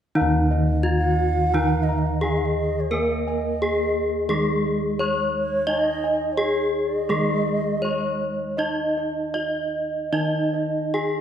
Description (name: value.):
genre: gamelan.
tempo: 86 BPM.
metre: 4/4.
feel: uneven beats.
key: Eb slendro.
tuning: A4 = 439 Hz.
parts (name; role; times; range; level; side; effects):
gamelan-type bronze metallophone; melody; 0.2-11.2 s; Eb4 to Eb5; -24 LUFS; equal; none.
gamelan-type bronze metallophone; accompaniment; 0.2-11.2 s; Eb3 to Eb4; -28 LUFS; right 2 dB; none.
gamelan-type bossed gongs; arpeggios; 0.2-11.2 s; Eb5 to Db6-25c; -32 LUFS; left 4 dB; none.
gamelan-type bossed gongs; bass; 0.2-11.2 s; Eb2 to Eb5; -27 LUFS; left 1 dB; none.
mellow bansuri; second line; 1.0-8.5 s; Db5-29c to Gb5-38c; -28 LUFS; right 4 dB; none.
room: wet scoring stage reverb, RT60 1.5 s.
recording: recorded in a church or concert hall.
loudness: -20 LUFS.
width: side -9 dB against mid.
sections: 0.2-11.2 A section.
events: none.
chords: none.